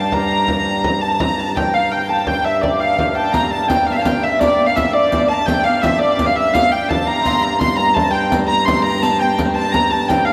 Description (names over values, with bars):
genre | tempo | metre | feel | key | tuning
medieval dance | 112 BPM (dotted quarters) | 6/8 | straight | G dorian | A4 = 440 Hz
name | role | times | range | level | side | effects
dark hurdy-gurdy | melody | 0.0-10.3 s | D5 to C6 | -19 LUFS | equal | none
concert harp | second line | 0.0-10.3 s | D5 to C6 | -28 LUFS | equal | none
dark fiddle | second line | 0.0-10.3 s | D5 to C6 | -25 LUFS | equal | none
pedal harmonium | drone | 0.0-10.3 s | G2 | -26 LUFS | equal | none
frame drum | percussion | 0.1-10.3 s | none | -25 LUFS | equal | none
riq | percussion | 3.3-10.3 s | none | -26 LUFS | equal | none
room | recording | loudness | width
wet cathedral reverb, RT60 5.3 s | none | -16 LUFS | mono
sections
0.0-3.3 A section; 3.3-10.3 A section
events
none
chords
none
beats
| 0.12 0.66 | 1.19 1.73 | 2.27 2.80 | 3.34 3.87 | 4.41 4.94 | 5.47 6.01 | 6.54 7.08 | 7.61 8.14 | 8.67 9.21 | 9.74 10.27